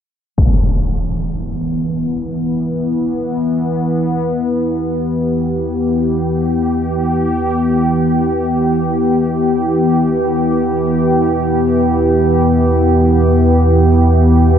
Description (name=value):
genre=dark ambient drone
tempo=free time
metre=none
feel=none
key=E minor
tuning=A4 = 435 Hz
part: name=sweeping resonant pad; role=sustained chords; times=1.0-14.6 s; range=E3 to G4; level=-14 LUFS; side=equal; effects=chorus
part: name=deep rumbling drone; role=drone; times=2.3-14.6 s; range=E2 to B2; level=-19 LUFS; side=right 1 dB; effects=built-in reverb
part: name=impact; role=percussion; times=0.4-0.6 s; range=none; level=-18 LUFS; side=equal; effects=low-pass filter on sfx
room=wet huge ambient reverb, RT60 7.8 s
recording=none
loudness=-13 LUFS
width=side -8 dB against mid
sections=0.4-14.6 A section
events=filter sweep on synth drone 0.4-14.6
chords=0.4 Em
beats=free time